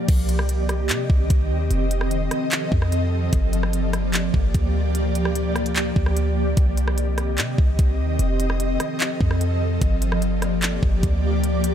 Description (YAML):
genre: hip hop, atmospheric cloud-rap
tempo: 148 BPM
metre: 4/4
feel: half-time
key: G minor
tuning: A4 = 441 Hz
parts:
  - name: ethereal airy pad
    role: sustained chords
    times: 0.0-11.7 s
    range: Eb3 to Eb5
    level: -24 LUFS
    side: equal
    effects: ensemble chorus, built-in reverb, tremolo, sidechain pumping
  - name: clean 808-style bass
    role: bass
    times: 0.1-11.7 s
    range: F1 to C3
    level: -22 LUFS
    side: equal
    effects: none
  - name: trap drum kit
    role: drums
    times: 0.1-11.7 s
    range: crash cymbal, handclaps, hi-hat, kick drum, rim click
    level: -23 LUFS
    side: equal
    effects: none
room: digital ambience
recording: none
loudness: -19 LUFS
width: side -9 dB against mid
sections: 0.1-11.7 A section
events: none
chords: 0.1 Cm; 1.7 F7; 3.3 Gm7; 6.6 Cm; 8.2 F7; 9.8 Gm7